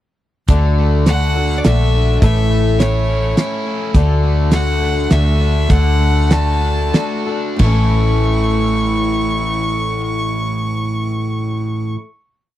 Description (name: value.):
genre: folk rock and heartland rock.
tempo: 89-104 BPM.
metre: 3/4.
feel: straight.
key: A major.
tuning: A4 = 439 Hz.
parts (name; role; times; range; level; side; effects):
picked swing-style acoustic guitar; accompaniment; 0.5-12.1 s; A2 to A4; -22 LUFS; left 5 dB; none.
overdriven semi-hollow guitar; riff; 0.5-12.0 s; A2 to F#4; -22 LUFS; right 2 dB; none.
hollow-body short-scale fingered electric bass; bass; 0.5-11.9 s; A1 to D2; -15 LUFS; equal; none.
damped 70s drum kit; drums; 0.5-7.8 s; crash cymbal, hi-hat, kick drum, snare drum; -14 LUFS; equal; none.
bright fiddle; melody; 1.1-11.9 s; C#5 to C#6; -22 LUFS; right 1 dB; none.
room: little or no reverb.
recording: dry, close 1970s-style studio recording.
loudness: -13 LUFS.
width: side -13 dB against mid.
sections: 0.5-7.6 pre-chorus; 7.6-11.6 final chord.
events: slowing down 3.9-7.6.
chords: 0.5 D; 2.2 A; 3.9 D; 7.6 A.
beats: | 0.49 1.07 1.65 | 2.22 2.80 3.37 | 3.95 4.52 5.11 | 5.70 6.31 6.95 | 7.61 8.28 8.95 | 9.62 10.30 10.97.